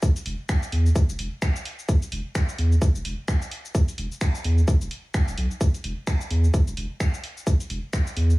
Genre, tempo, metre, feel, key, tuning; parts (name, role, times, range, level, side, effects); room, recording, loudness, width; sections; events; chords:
minimal techno; 129 BPM; 4/4; swing 59% on 16ths; A4 = 441 Hz
electronic kick drum; drums; 0.0-8.0 s; -20 LUFS; equal
punchy analog drum machine; drums; 0.0-8.4 s; cabasa, finger snaps, hi-hat; -33 LUFS; equal
saturated sub bass; bass; 0.3-8.3 s; E1 to E2; -21 LUFS; equal; sidechain pumping
little or no reverb; -22 LUFS; side -21 dB against mid
0.0-8.4 A section